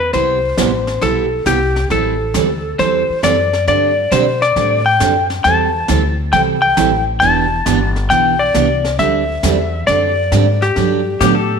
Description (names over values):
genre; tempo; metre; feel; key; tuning
country, western swing; 136 BPM; 4/4; swing 68% on 8ths; unclear; A4 = 439 Hz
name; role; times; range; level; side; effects
clean lap steel guitar; melody; 0.0-11.6 s; G4 to A5; -15 LUFS; left 3 dB; none
upright bass; bass; 0.0-11.6 s; E1 to B2; -20 LUFS; left 1 dB; none
picked steel-string acoustic guitar; accompaniment; 0.1-11.3 s; C3 to A4; -18 LUFS; right 9 dB; none
jazz brush drum kit; drums; 0.1-11.6 s; brushed snare drum, hi-hat, snare drum; -26 LUFS; left 2 dB; none
pedal steel guitar; second line; 11.2-11.6 s; G4 to A4; -17 LUFS; left 10 dB; none
room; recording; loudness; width
moderate echo chamber reverb, RT60 1.3 s, studio ambience; 1960s-style stereo with parts hard left and right; -12 LUFS; side -6 dB against mid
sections
0.0-11.6 A section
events
none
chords
0.1 Cmaj7; 1.9 Am7; 3.7 D7sus4; 5.4 Am7; 7.2 Em7; 9.0 D7sus4; 10.8 Gmaj7